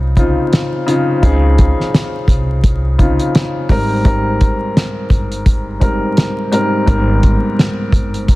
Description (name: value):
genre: hip hop, boom-bap hip-hop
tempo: 85 BPM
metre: 4/4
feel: swing 58% on 16ths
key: Db lydian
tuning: A4 = 441 Hz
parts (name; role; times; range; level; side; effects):
- dark baby grand piano; accompaniment; 0.0-8.4 s; Ab2 to Bb4; -16 LUFS; left 1 dB; cassette tape, high-pass filter, low-pass filter
- upright bass; bass; 0.0-8.4 s; G1 to Db2; -17 LUFS; equal; none
- cloth-damped thuddy drum kit; drums; 0.2-8.4 s; hi-hat, kick drum, snare drum; -13 LUFS; equal; none
room: small room ambience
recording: dense, heavily limited modern master, vinyl crackle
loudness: -12 LUFS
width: side -19 dB against mid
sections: 0.0-8.4 A section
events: none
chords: 0.0 Dbmaj9; 3.7 Abmaj9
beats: 0.52 | 1.23 1.94 2.64 3.35 | 4.05 4.76 5.46 6.17 | 6.88 7.58 8.29